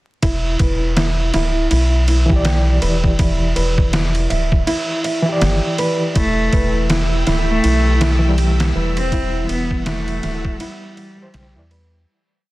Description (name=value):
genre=trip hop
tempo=81 BPM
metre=4/4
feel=swing 59% on 16ths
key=E minor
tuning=A4 = 440 Hz
part: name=nylon-string guitar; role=arpeggios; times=0.2-11.9 s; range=E4 to E5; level=-23 LUFS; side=right 1 dB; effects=tape echo
part: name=round analog bass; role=bass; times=0.2-12.1 s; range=D1 to E2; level=-18 LUFS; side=equal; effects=none
part: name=trip hop sampler-style drum kit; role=drums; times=0.2-11.9 s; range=kick drum, ride cymbal, snare drum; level=-20 LUFS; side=equal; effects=studio reverb
part: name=overdriven reed electric piano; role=accompaniment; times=2.3-11.7 s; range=E3 to D5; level=-22 LUFS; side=equal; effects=fast tremolo, low-pass filter, tape echo
part: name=rich cello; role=melody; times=6.2-12.0 s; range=G3 to C4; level=-22 LUFS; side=equal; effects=vintage 12-bit sampler grit, tape echo
part: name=string machine, cellos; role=sustained chords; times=6.2-12.0 s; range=E4 to E6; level=-27 LUFS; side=left 1 dB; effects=ensemble chorus
room=little or no reverb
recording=dense, heavily limited modern master, vinyl crackle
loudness=-15 LUFS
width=side -18 dB against mid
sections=0.2-12.1 groove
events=filter sweep on reed electric piano 0.2-12.1; fade-out 8.1-12.1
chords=0.2 Em7; 6.2 C (rootless)